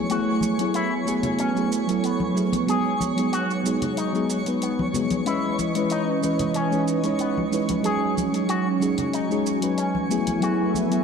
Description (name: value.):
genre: sunset chillout.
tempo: 93 BPM.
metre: 4/4.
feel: straight.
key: unclear.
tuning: A4 = 441 Hz.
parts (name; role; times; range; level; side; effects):
mellow FM electric piano; accompaniment; 0.0-11.0 s; E3 to D#5; -24 LUFS; moving between left 5 dB and right 5 dB; chorus, auto-pan, ping-pong delay.
lush unison pad; sustained chords; 0.0-11.0 s; E3 to G#5; -27 LUFS; right 2 dB; chorus.
twinkling granular texture; texture; 0.0-11.0 s; C#5 to C#6; -33 LUFS; left 1 dB; built-in reverb.
electric guitar with an envelope filter; arpeggios; 0.1-10.7 s; B3 to G#4; -30 LUFS; left 3 dB; low-pass filter, ping-pong delay.
electronic hi-hat and shaker; drums; 0.1-11.0 s; none; -35 LUFS; right 2 dB; overdrive.
congas; percussion; 0.4-10.9 s; none; -32 LUFS; left 2 dB; none.
room: wet lush hall reverb, RT60 1.6 s, digital ambience.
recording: dark, warm production.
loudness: -21 LUFS.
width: side -6 dB against mid.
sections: 0.0-11.0 A section.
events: filter sweep on analog synth pad 0.0-11.0; filter sweep on clean electric guitar 0.0-11.0.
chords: 0.0 F#m11; 2.7 G#m7; 5.3 C#m9; 7.8 G#7sus4; 10.1 F#m11.